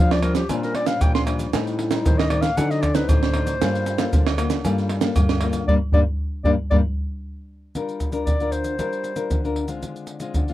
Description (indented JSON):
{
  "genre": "samba and choro",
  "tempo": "116 BPM",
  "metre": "4/4",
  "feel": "straight",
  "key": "G minor",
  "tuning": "A4 = 442 Hz",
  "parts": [
    { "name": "mellow clarinet", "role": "melody", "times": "0.0-9.6 s", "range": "F4 to C6", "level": "-26 LUFS", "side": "left 1 dB", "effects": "none" },
    { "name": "nylon-string guitar", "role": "accompaniment", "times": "0.0-10.5 s", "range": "A2 to Bb4", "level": "-27 LUFS", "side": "left 5 dB", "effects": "none" },
    { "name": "nylon-string guitar", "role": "bass", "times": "0.0-6.8 s", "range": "G2 to F3", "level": "-25 LUFS", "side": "equal", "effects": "none" },
    { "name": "caixa, agogo bells, tube shaker, pandeiro, tamborim and surdo", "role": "percussion", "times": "0.1-10.5 s", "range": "none", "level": "-21 LUFS", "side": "right 1 dB", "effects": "none" }
  ],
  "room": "light reverb",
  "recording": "dry, close 1970s-style studio recording",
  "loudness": "-19 LUFS",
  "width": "side -14 dB against mid",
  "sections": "0.0-7.8 A section; 7.8-10.5 B section",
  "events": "clarinet solo 0.0-7.8; band accent 5.7-7.8; drum fill 7.2-7.8",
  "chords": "0.0 Bb69; 1.5 Am7b5; 2.6 D7b9; 3.6 Gm9; 7.8 Gm7; 9.8 Dm7b5",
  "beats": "0.50 1.02 | 1.54 2.06 2.57 3.09 | 3.61 4.13 4.64 5.16 | 5.68 6.20 6.72 7.24 | 7.75 8.27 8.79 9.31 | 9.83 10.35"
}